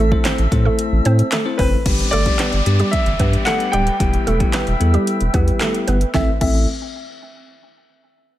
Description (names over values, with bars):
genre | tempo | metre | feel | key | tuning
dance-pop | 112 BPM | 4/4 | straight | A minor | A4 = 440 Hz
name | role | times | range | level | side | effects
mallet-like synth pluck | melody | 0.0-6.7 s | G3 to C5 | -23 LUFS | right 3 dB | chorus, low-pass filter, ping-pong delay
bell-like tine electric piano | accompaniment | 0.0-6.7 s | G3 to C5 | -24 LUFS | left 6 dB | sidechain pumping, low-pass filter
flute section | sustained chords | 0.0-6.4 s | C4 to E6 | -29 LUFS | equal | sidechain pumping, low-pass filter
saturated sub bass | bass | 0.0-6.7 s | D1 to A2 | -17 LUFS | equal | sidechain pumping
deep house drum kit | drums | 0.1-6.5 s | crash cymbal, handclaps, hi-hat, kick drum, snare drum | -20 LUFS | equal | overdrive
clear baby grand piano | melody | 1.6-6.7 s | B4 to G5 | -24 LUFS | left 2 dB | low-pass filter, ping-pong delay
downlifter | sound effects | 1.9-6.1 s | none | -29 LUFS | equal | none
room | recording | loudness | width
little or no reverb | none | -15 LUFS | side -14 dB against mid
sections
0.0-1.9 A section; 1.9-6.1 B section; 6.1-8.3 C section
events
drop 0.0-1.9; filter sweep 1.9-6.1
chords
0.0 Am; 1.9 G; 4.0 Em; 6.1 Am